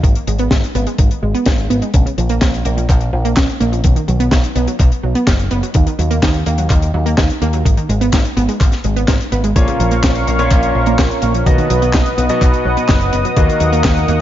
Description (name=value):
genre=italo disco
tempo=126 BPM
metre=4/4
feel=straight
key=Eb minor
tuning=A4 = 440 Hz
part: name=wide unison pluck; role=arpeggios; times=0.0-14.2 s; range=Db3 to Eb4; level=-20 LUFS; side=right 2 dB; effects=ping-pong delay
part: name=picked electric bass with an envelope filter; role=bass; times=0.0-14.2 s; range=F#1 to Eb2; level=-17 LUFS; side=equal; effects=tube saturation
part: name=electronic kick drum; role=drums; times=0.0-13.9 s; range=none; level=-14 LUFS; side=equal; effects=studio ambience
part: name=tight funk drum kit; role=drums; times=0.0-14.2 s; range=handclaps, hi-hat, snare drum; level=-21 LUFS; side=left 1 dB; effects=studio ambience
part: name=warm analog pad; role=sustained chords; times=9.6-14.2 s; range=Bb4 to D#6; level=-18 LUFS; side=equal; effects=chorus
part: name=bright concert grand piano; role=stabs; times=9.6-14.2 s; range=Bb2 to D#5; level=-19 LUFS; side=left 2 dB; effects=ping-pong delay
room=light reverb, studio ambience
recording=dark, warm production, nothing above 7.5 kHz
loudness=-12 LUFS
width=side -12 dB against mid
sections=0.0-14.2 A section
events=none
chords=0.0 Abm; 1.9 Bbm; 3.8 B; 5.7 Ebm; 7.7 Abm; 9.6 Bbm; 11.5 B; 13.4 Ebm